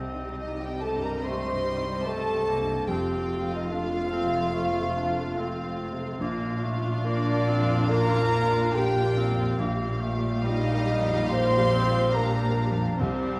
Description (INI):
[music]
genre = cinematic, emotional film score for orchestra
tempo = 72 BPM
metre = 4/4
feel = rubato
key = unclear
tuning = A4 = 438 Hz
[part]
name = warm studio violin section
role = melody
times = 0.0-13.4 s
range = C5 to F5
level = -40 LUFS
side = equal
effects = none
[part]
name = warm clarinet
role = second line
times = 0.0-13.4 s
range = G3 to Eb4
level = -38 LUFS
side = equal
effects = none
[part]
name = dark baby grand piano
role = accompaniment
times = 0.0-13.4 s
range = Bb1 to Bb4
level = -36 LUFS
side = equal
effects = none
[part]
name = warm studio viola section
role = accompaniment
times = 0.0-13.4 s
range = G3 to G4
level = -37 LUFS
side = equal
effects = none
[part]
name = dark studio double bass section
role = bass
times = 0.0-13.4 s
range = F1 to C2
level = -33 LUFS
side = equal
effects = none
[part]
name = warm studio cello section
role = bass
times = 0.0-13.4 s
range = F2 to C3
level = -36 LUFS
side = equal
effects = none
[part]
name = timpani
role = percussion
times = 0.0-0.8, 13.0-13.4 s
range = C3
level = -37 LUFS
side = equal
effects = none
[part]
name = clear studio violin section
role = second line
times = 0.4-13.0 s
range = D5 to C6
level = -39 LUFS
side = equal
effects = none
[part]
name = mellow hollow small flute group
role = second line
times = 0.4-13.0 s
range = D5 to C6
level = -36 LUFS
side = equal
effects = none
[part]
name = dark French horn section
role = sustained chords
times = 0.4-13.0 s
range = D4 to C5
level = -31 LUFS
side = equal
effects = none
[sound]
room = moderate scoring stage reverb, RT60 2.0 s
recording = vinyl crackle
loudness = -26 LUFS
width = mono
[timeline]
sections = 0.0-13.4 A section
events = none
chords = 0.0 Cm; 2.9 F; 6.2 Bb; 9.6 Ebadd9/Bb